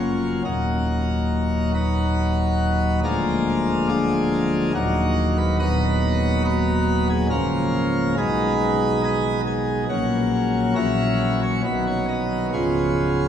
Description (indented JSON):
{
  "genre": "classical, chorale-style piece for pipe organ",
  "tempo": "70 BPM",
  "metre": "3/4",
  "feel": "straight",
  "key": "unclear",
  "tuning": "A4 = 441 Hz",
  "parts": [
    { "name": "pipe organ, plenum", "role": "solo", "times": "0.0-13.3 s", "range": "C#1 to D#5", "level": "-19 LUFS", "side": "equal", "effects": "none" }
  ],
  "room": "wet cathedral reverb, RT60 5.8 s",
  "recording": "in a vast, echoing space, studio reverb",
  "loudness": "-19 LUFS",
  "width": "side -9 dB against mid",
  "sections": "0.0-13.3 A section",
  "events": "none",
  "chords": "0.4 D#m; 3.0 A#7/D; 4.7 D#m; 5.6 B/D#; 7.3 A#m/C#; 8.2 G#m/B; 9.9 F#/A#; 10.8 F#7/A#; 11.6 B; 12.5 C#7"
}